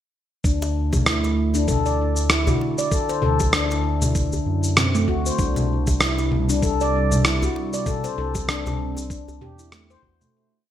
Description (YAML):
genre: organic downtempo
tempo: 97 BPM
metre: 4/4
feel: swing 57% on 16ths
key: D mixolydian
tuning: A4 = 440 Hz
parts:
  - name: handpan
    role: arpeggios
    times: 0.4-10.3 s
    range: A3 to D5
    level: -25 LUFS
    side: left 2 dB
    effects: digital delay
  - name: round analog bass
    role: bass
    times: 0.4-10.3 s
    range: C2 to F#2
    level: -24 LUFS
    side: right 1 dB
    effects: sidechain pumping
  - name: electronic cabasa, congas and rim click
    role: drums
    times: 0.4-10.3 s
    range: none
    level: -23 LUFS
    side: left 1 dB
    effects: gated reverb
  - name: electronic kick drum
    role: drums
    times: 0.4-10.2 s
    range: none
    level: -24 LUFS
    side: right 1 dB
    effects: none
  - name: warbly tape-like pad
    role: sustained chords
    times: 0.9-10.3 s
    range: C3 to E4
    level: -30 LUFS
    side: right 2 dB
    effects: chorus, built-in reverb, sidechain pumping
  - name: djembe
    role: percussion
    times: 0.6-9.4 s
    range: none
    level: -32 LUFS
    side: left 1 dB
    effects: none
room: moderate plate reverb, RT60 1.5 s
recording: bright 1980s-style digital production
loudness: -19 LUFS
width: side -11 dB against mid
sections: 0.4-10.3 groove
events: fade-out 7.0-10.3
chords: 0.4 D; 5.4 C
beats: | 0.44 1.06 1.68 2.30 | 2.92 3.54 4.16 4.77 | 5.39 6.01 6.63 7.25 | 7.87 8.48 9.10 9.72